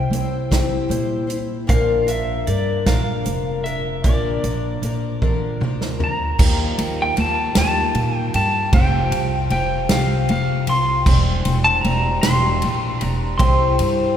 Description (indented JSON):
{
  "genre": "folk rock and heartland rock",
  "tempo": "51 BPM (dotted quarters)",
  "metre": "6/8",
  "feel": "straight",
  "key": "C mixolydian",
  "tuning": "A4 = 441 Hz",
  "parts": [
    { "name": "pedal steel guitar", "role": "melody", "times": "0.0-14.2 s", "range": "D5 to C6", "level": "-22 LUFS", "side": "equal", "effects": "none" },
    { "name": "picked twelve-string acoustic guitar", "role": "accompaniment", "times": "0.0-14.2 s", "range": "Bb2 to C5", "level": "-24 LUFS", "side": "left 4 dB", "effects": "none" },
    { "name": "upright bass", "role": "bass", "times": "0.0-14.1 s", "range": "E1 to Bb2", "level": "-22 LUFS", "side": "equal", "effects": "none" },
    { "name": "natural country drum kit", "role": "drums", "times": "0.1-14.0 s", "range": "crash cymbal, hi-hat, kick drum, ride cymbal, snare drum, toms", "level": "-21 LUFS", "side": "right 1 dB", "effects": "none" }
  ],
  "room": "wet church reverb, RT60 2.9 s",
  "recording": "recorded in a church or concert hall",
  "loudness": "-17 LUFS",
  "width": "side -9 dB against mid",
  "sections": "0.0-6.4 A section; 6.4-14.2 B section",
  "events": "drum fill 5.2-6.4",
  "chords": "0.0 C; 1.7 Bb; 6.4 Ebadd9; 8.7 Fsus2; 11.1 Cadd9/E; 13.4 C"
}